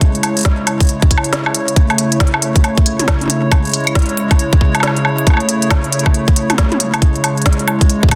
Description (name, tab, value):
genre	IDM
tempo	137 BPM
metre	4/4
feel	swing 62% on 16ths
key	unclear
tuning	A4 = 440 Hz
part	hollow soft pad	sustained chords	0.0-8.2 s	C#3 to C#5	-20 LUFS	equal	chorus
part	electronic kick drum	drums	0.0-8.2 s	none	-14 LUFS	equal	none
part	organic electronic drum kit	drums	0.0-8.2 s	hi-hat, snare drum, toms, woodblock	-20 LUFS	equal	digital delay
room	light reverb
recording	dense, heavily limited modern master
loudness	-14 LUFS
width	mono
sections	0.0-8.2 A section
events	none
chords	0.0 C#m; 1.8 A; 3.5 C#m; 5.3 A; 7.0 C#m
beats	| 0.01 0.45 0.89 1.33 | 1.76 2.20 2.64 3.08 | 3.52 3.95 4.39 4.83 | 5.27 5.71 6.14 6.58 | 7.02 7.46 7.89